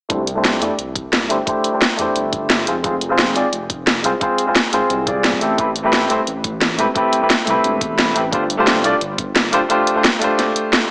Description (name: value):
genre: liquid drum and bass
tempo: 175 BPM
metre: 4/4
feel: straight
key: C major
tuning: A4 = 440 Hz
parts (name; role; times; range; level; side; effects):
- bright grand piano; accompaniment; 0.1-10.9 s; Ab3 to D5; -17 LUFS; equal; low-pass filter, tape echo
- dark detuned saw bass; bass; 0.1-9.6 s; D1 to E2; -26 LUFS; equal; none
- drum and bass drum kit; drums; 0.1-10.8 s; hi-hat, snare drum; -17 LUFS; equal; none
- electronic kick drum; drums; 0.1-9.3 s; none; -26 LUFS; equal; none
room: moderate recital hall reverb, RT60 1.5 s, digital ambience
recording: small speaker sound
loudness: -14 LUFS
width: side -31 dB against mid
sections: 0.1-10.9 A section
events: filter sweep on grand piano 0.1-10.9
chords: 0.1 C69; 2.7 Fm; 5.4 Am9; 8.3 G9sus4